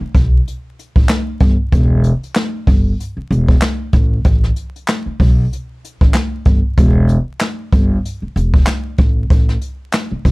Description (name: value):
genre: hip hop, boom-bap hip-hop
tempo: 95 BPM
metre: 4/4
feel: swing 56% on 16ths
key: E minor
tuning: A4 = 440 Hz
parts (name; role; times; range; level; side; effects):
- upright bass; bass; 0.0-10.3 s; E1 to B1; -15 LUFS; equal; none
- jazz brush drum kit; drums; 0.1-10.3 s; handclaps, hi-hat, kick drum, snare drum; -14 LUFS; equal; none
room: little or no reverb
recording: vinyl crackle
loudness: -13 LUFS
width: side -25 dB against mid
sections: 0.0-10.3 A section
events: none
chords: none